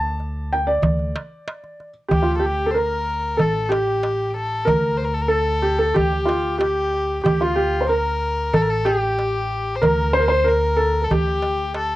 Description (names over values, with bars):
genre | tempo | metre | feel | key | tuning
Arabic maqam ensemble | 93 BPM | 4/4 | straight | D maqam bayati | A4 = 440 Hz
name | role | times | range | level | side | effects
felt-muted upright piano | melody | 0.0-12.0 s | F4 to A5 | -21 LUFS | right 1 dB | cassette tape
upright bass | bass | 0.0-12.0 s | A1 to D2 | -25 LUFS | equal | none
darbuka | percussion | 0.2-11.9 s | none | -23 LUFS | right 1 dB | none
warm violin | second line | 2.1-12.0 s | F4 to C5 | -24 LUFS | left 3 dB | cassette tape
room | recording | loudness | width
light reverb | home recording on cassette | -18 LUFS | side -16 dB against mid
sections
0.0-2.1 A section; 2.1-12.0 B section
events
none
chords
none